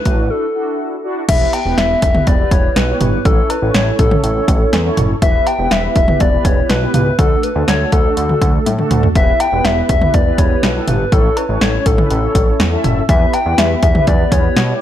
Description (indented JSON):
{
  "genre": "synth-pop",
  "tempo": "122 BPM",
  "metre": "4/4",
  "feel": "straight",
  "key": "E dorian",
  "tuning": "A4 = 441 Hz",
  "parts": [
    { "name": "hollow clarinet-like synth lead", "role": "melody", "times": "0.0-14.8 s", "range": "A4 to G5", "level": "-18 LUFS", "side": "left 2 dB", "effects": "chorus, tape echo" },
    { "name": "mellow synth brass", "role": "accompaniment", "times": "0.1-14.8 s", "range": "A3 to E5", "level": "-20 LUFS", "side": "right 1 dB", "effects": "chorus" },
    { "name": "fat analog bass", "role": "bass", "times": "0.1-14.7 s", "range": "E1 to B2", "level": "-18 LUFS", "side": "equal", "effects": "none" },
    { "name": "punchy analog drum machine", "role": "drums", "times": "0.1-14.7 s", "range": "cowbell, crash cymbal, hi-hat, kick drum, snare drum, toms", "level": "-15 LUFS", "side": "equal", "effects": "none" }
  ],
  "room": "light reverb, digital ambience",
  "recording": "dark, warm production",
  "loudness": "-12 LUFS",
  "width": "side -11 dB against mid",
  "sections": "0.0-1.3 A section; 1.3-14.8 B section",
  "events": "break 0.3-1.3; drum fill 8.7-9.2",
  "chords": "0.0 Dadd9; 1.3 Em; 3.3 A; 5.2 Em; 7.2 D; 9.2 Em; 11.1 A; 13.1 Em",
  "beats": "0.30 0.79 | 1.29 1.78 2.27 2.76 | 3.25 3.75 4.24 4.73 | 5.22 5.71 6.20 6.70 | 7.19 7.68 8.17 8.66 | 9.15 9.65 10.14 10.63 | 11.12 11.61 12.11 12.60 | 13.09 13.58 14.07 14.56"
}